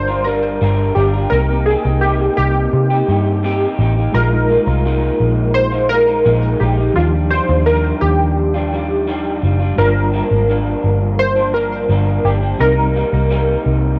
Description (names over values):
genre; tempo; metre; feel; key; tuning
indie pop, bedroom pop; 85 BPM; 4/4; straight; Eb major; A4 = 443 Hz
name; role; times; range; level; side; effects
warm analog keys; melody; 0.0-14.0 s; F4 to C5; -20 LUFS; equal; phaser, analog chorus, cassette tape, tape echo
electric guitar through a small old amp; accompaniment; 0.0-14.0 s; G2 to Bb4; -24 LUFS; equal; subtle chorus, warbly pitch drift, cassette tape
reed electric piano; accompaniment; 0.0-14.0 s; F3 to Bb4; -28 LUFS; equal; fast tremolo, cassette tape
vintage muted picked electric bass; bass; 0.0-14.0 s; Gb1 to C3; -19 LUFS; equal; none
room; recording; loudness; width
light reverb; home recording on cassette; -16 LUFS; mono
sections
0.0-14.0 A section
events
none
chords
0.0 Gm7; 1.3 Cm7; 4.1 Bb7sus4; 7.0 Ebmaj9; 9.8 Gm7; 12.6 Cm7